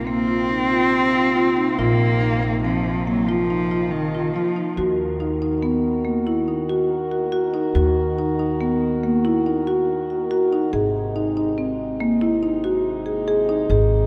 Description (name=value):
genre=contemporary instrumental, chamber music in an uneven meter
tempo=141 BPM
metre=7/4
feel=straight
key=unclear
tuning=A4 = 441 Hz
part: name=dark cello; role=second line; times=0.0-4.8 s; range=Eb3 to C4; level=-24 LUFS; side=equal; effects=none
part: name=mellow French horn section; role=sustained chords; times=0.0-14.1 s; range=C3 to Bb4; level=-29 LUFS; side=equal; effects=none
part: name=upright bass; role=bass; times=0.0-14.1 s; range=Ab1 to Eb2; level=-28 LUFS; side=equal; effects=none
part: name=marimba with soft mallets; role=arpeggios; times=0.1-14.0 s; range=Bb3 to Ab4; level=-24 LUFS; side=equal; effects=none
room=wet cathedral reverb, RT60 5.9 s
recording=in a vast, echoing space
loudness=-21 LUFS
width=mono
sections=0.0-4.8 A section; 4.8-14.1 B section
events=none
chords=0.0 Bbsus2; 4.8 Ebm; 10.7 Ab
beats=0.06 0.49 0.92 1.34 | 1.77 2.20 2.63 3.06 3.48 3.91 4.34 | 4.76 5.19 5.62 6.04 6.47 6.90 7.32 | 7.75 8.18 8.60 9.03 9.46 9.88 10.31 | 10.73 11.16 11.58 12.01 12.43 12.86 13.29 | 13.71